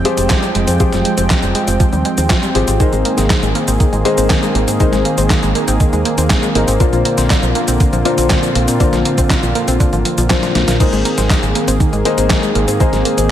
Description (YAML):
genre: italo disco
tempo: 120 BPM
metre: 4/4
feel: straight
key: unclear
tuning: A4 = 440 Hz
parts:
  - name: warm analog pad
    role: sustained chords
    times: 0.0-13.3 s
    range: D3 to G5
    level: -18 LUFS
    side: right 1 dB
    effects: chorus
  - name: dark baby grand piano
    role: stabs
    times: 0.0-13.3 s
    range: Bb2 to C5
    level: -20 LUFS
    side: left 5 dB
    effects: ping-pong delay
  - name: analog pluck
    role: arpeggios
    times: 0.1-13.2 s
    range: D3 to C4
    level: -21 LUFS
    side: right 2 dB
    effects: chorus, ping-pong delay
  - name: clean 12-bit digital drum machine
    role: drums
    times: 0.1-13.3 s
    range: cabasa, crash cymbal, handclaps, hi-hat, snare drum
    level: -19 LUFS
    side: equal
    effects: gated reverb
  - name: fingered electric bass with an envelope filter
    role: bass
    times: 0.2-13.3 s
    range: F1 to Bb2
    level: -18 LUFS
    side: equal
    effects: none
  - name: electronic kick drum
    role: drums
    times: 0.3-12.9 s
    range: none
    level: -15 LUFS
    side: equal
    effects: none
room: light reverb, digital ambience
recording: none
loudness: -12 LUFS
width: side -11 dB against mid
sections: 0.0-10.8 A section; 10.8-13.3 A section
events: drum fill 10.4-10.8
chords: 0.0 Fmadd9; 2.8 Abadd9; 6.8 Bbadd9; 10.8 Abadd9